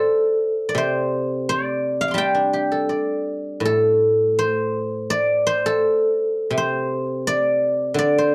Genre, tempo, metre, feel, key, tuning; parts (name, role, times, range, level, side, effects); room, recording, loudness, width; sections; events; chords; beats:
chinese traditional, Chinese solo plucked strings; 83 BPM; 2/4; rubato; D yu mode; A4 = 439 Hz
guzheng; solo; 0.0-8.3 s; A2 to D6; -21 LUFS; equal
light reverb; dark, warm production; -21 LUFS; mono
0.0-8.3 A section
0.03 | 0.76 1.47 | 2.17 2.89 | 3.64 4.38 | 5.10 5.82 | 6.54 7.25 | 7.97